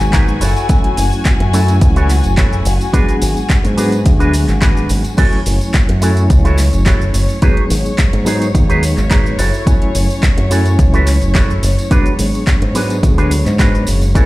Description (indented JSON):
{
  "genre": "nu-disco, nu disco",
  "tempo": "107 BPM",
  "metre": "4/4",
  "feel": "straight",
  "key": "unclear",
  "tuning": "A4 = 439 Hz",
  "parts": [
    { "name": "reed electric piano", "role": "accompaniment", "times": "0.0-14.3 s", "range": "F#3 to G#5", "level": "-20 LUFS", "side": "equal", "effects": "fast tremolo, ping-pong delay" },
    { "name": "dark studio string section", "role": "sustained chords", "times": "0.0-14.3 s", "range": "B3 to G#5", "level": "-25 LUFS", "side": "left 4 dB", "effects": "sidechain pumping" },
    { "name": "electric guitar with an envelope filter", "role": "riff", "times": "0.0-14.3 s", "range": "D4 to C#5", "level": "-22 LUFS", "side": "right 2 dB", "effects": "analog chorus, ping-pong delay" },
    { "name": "fingered electric bass with an envelope filter", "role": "bass", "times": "0.0-14.3 s", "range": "F#1 to G#2", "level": "-14 LUFS", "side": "equal", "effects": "none" },
    { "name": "pop drum kit", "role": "drums", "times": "0.0-14.3 s", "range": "cabasa, crash cymbal, handclaps, hi-hat", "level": "-23 LUFS", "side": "equal", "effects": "overdrive" },
    { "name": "tambourine", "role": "percussion", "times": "0.0-14.3 s", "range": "none", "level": "-32 LUFS", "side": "left 1 dB", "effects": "none" },
    { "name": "electronic kick drum", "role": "drums", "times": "0.1-14.3 s", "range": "none", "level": "-12 LUFS", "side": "equal", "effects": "overdrive" }
  ],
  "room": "little or no reverb",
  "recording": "played on a big sound system in a bare room, large studio reverb",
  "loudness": "-11 LUFS",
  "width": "side -18 dB against mid",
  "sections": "0.0-14.3 A section",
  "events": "none",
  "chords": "0.4 F#m7; 2.9 G#m7b5; 5.2 F#m7; 7.4 G#m7; 9.4 F#m7; 11.9 G#m7b5"
}